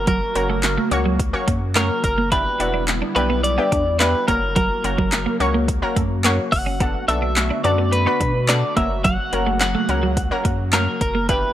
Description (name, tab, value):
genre	dance-pop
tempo	107 BPM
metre	4/4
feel	straight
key	unclear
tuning	A4 = 440 Hz
part	twelve-string electric guitar	melody	0.0-11.5 s	A#4 to F#5	-22 LUFS	equal	analog delay
part	analog pluck	accompaniment	0.0-11.5 s	A#3 to C#5	-25 LUFS	left 1 dB	chorus, sidechain pumping
part	airy breathy pad	sustained chords	0.0-11.5 s	C#3 to F#4	-28 LUFS	left 1 dB	chorus, sidechain pumping
part	warm sub bass	bass	0.0-11.4 s	E1 to B2	-24 LUFS	equal	sidechain pumping
part	twelve-string electric guitar	riff	0.1-11.4 s	F#3 to E4	-26 LUFS	right 4 dB	analog chorus
part	deep house drum kit	drums	0.1-11.4 s	handclaps, hi-hat, kick drum, snare drum	-23 LUFS	equal	overdrive
room	light reverb, digital ambience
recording	dry, gritty hardware recording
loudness	-17 LUFS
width	side -12 dB against mid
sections	0.0-11.5 A section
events	none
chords	0.0 F#; 2.3 Em7; 4.3 F#; 6.8 Bm7; 8.8 F#